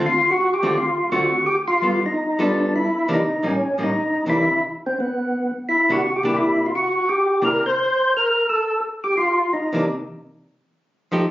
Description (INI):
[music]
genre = jazz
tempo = 172 BPM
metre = 4/4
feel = swing 63% on 8ths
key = C mixolydian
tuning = A4 = 440 Hz
[part]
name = archtop guitar, miked and amplified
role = accompaniment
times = 0.0-7.6, 9.7-11.2 s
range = A2 to A4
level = -22 LUFS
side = equal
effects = none
[part]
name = percussive tonewheel organ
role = melody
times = 0.1-9.8 s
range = B3 to C5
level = -19 LUFS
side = equal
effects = overdrive, chorus vibrato, slow rotary speaker
[sound]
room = moderate studio ambience, RT60 0.5 s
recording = recorded on a phone in the room, club reverb, compression, nothing above 7.5 kHz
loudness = -18 LUFS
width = side -15 dB against mid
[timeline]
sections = 0.0-5.7 A section; 5.7-11.3 A section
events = none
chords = 0.1 Dm7; 1.5 G9; 2.9 C9; 3.6 A7b9; 4.3 C9; 5.0 N.C.; 5.7 C9; 9.9 F9